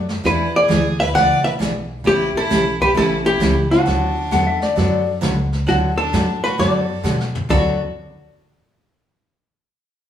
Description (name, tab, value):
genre	country, western swing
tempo	132 BPM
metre	4/4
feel	swing 66% on 8ths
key	D major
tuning	A4 = 442 Hz
part	upright bass	bass	0.0-7.8 s	A1 to B2	-23 LUFS	equal	none
part	vintage brush drum kit	drums	0.1-7.9 s	brushed snare drum, hi-hat, kick drum, snare drum, splash cymbal, toms	-25 LUFS	equal	none
part	picked steel-string acoustic guitar	accompaniment	0.2-7.7 s	C#3 to A4	-22 LUFS	right 1 dB	none
part	archtop guitar, miked and amplified	melody	0.3-7.8 s	F#4 to F#5	-19 LUFS	left 1 dB	none
part	clear fiddle	second line	0.3-7.8 s	D4 to D5	-26 LUFS	right 1 dB	none
part	clean lap steel guitar	second line	4.3-7.8 s	D5 to F#5	-21 LUFS	left 5 dB	none
room	wet stone room reverb, RT60 1.0 s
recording	band playing live in one room, small room ambience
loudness	-15 LUFS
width	side -10 dB against mid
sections	0.0-5.7 A section; 5.7-7.5 B section; 7.5-9.3 C section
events	drum fill 7.0-7.5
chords	0.3 E7; 2.1 A7; 3.9 D6